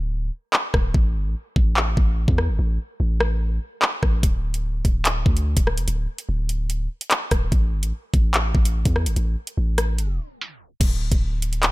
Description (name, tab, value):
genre	hip hop, drill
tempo	146 BPM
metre	4/4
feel	half-time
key	unclear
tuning	A4 = 440 Hz
part	long sustained 808-style bass	bass	0.0-11.7 s	D1 to E2	-22 LUFS	equal	none
part	drill drum kit	drums	0.5-11.7 s	crash cymbal, handclaps, hi-hat, kick drum, rim click	-20 LUFS	equal	none
room	little or no reverb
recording	tape stop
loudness	-20 LUFS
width	side -20 dB against mid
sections	0.0-10.8 A section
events	break 0.0-4.2; tape stop 10.0-10.8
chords	none